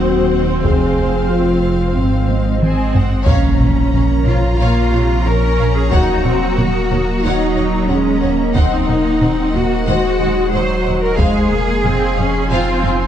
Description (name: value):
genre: cinematic, hybrid orchestral and electronic film score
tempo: 91 BPM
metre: 4/4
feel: straight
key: Bb minor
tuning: A4 = 441 Hz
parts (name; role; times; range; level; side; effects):
- rich studio violin section; melody; 0.0-13.1 s; F5 to Bb5; -29 LUFS; left 4 dB; none
- warm symphonic violin section; second line; 0.0-12.9 s; C5 to Gb5; -26 LUFS; left 3 dB; none
- warm symphonic viola section; accompaniment; 0.0-13.1 s; C3 to Eb4; -21 LUFS; right 1 dB; none
- mellow French horn section; sustained chords; 0.0-13.1 s; C4 to C5; -21 LUFS; left 4 dB; none
- phased analog pad; sustained chords; 0.0-13.1 s; F3 to F5; -24 LUFS; left 1 dB; phaser, chorus
- pure sine sub bass; bass; 0.0-13.1 s; Eb1 to Bb1; -20 LUFS; equal; none
- rich studio double bass section; bass; 0.0-12.9 s; F1 to F2; -22 LUFS; right 4 dB; none
- rich symphonic cello section; bass; 0.0-13.1 s; Eb2 to C5; -21 LUFS; right 3 dB; none
- taiko ensemble; drums; 0.6-13.1 s; none; -19 LUFS; equal; none
- impact; sound effects; 3.3-5.9 s; none; -22 LUFS; equal; none
room: moderate concert hall reverb, RT60 2.4 s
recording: dark, warm production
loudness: -13 LUFS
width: side -10 dB against mid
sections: 0.0-3.3 A section; 3.3-13.1 B section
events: drum fill 2.3-3.3, 12.8; impact 3.3-5.9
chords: 0.0 Cdim/Eb; 0.6 Fm; 2.0 Ab; 3.3 Bbm; 5.9 Ebm7; 8.6 Cdim/Eb; 11.2 Fm